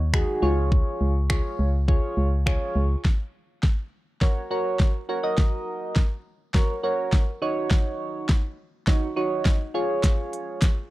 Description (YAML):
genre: dance-pop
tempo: 103 BPM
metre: 4/4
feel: straight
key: F# major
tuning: A4 = 440 Hz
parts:
  - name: organ-like FM bass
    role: bass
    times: 0.0-3.0 s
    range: C#2 to D#2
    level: -22 LUFS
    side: equal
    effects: sidechain pumping
  - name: soft electric-piano-like synth keys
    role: accompaniment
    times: 0.1-10.7 s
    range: D#4 to D#5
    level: -27 LUFS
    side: right 1 dB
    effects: chorus, phaser, sidechain pumping
  - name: pop drum kit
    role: drums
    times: 0.1-10.8 s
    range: finger snaps, hi-hat, kick drum, snare drum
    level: -21 LUFS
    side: equal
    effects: none
room: digital ambience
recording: dry, close 1970s-style studio recording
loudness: -22 LUFS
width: side -17 dB against mid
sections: 0.0-3.0 A section; 3.0-10.9 B section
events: build-up 3.0-10.9; drum fill 3.0-10.9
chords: 0.4 C#; 3.0 F#; 7.4 D#m7; 9.7 C#